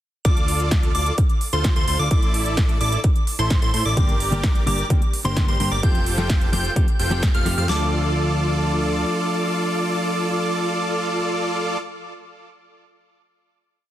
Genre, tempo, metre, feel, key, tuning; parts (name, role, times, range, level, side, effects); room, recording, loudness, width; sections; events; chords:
EDM, festival progressive house; 129 BPM; 4/4; straight; D minor; A4 = 440 Hz
plucky unison lead; arpeggios; 0.2-11.8 s; C6 to G6; -27 LUFS; equal; sidechain pumping, digital delay
big supersaw lead; riff; 0.2-11.8 s; E4 to G5; -26 LUFS; right 1 dB; sidechain pumping, digital delay
fat analog bass; bass; 0.2-9.0 s; F1 to A2; -24 LUFS; equal; sidechain pumping
big-room dance drum kit; drums; 0.2-7.8 s; kick drum, snare drum; -19 LUFS; equal
big-room dance drum kit; drums; 0.2-7.6 s; hi-hat, snare drum; -28 LUFS; right 1 dB; overdrive
clean electric guitar; accompaniment; 4.0-11.8 s; D3 to A4; -26 LUFS; left 2 dB; sidechain pumping, digital delay
little or no reverb; dense, heavily limited modern master; -18 LUFS; side -13 dB against mid
0.2-7.7 drop; 7.7-11.4 final chord
drop 0.2-7.7; band accent 7.2
0.2 Dm; 2.1 Asus4; 4.0 Gm; 5.8 Fadd9; 7.7 Dm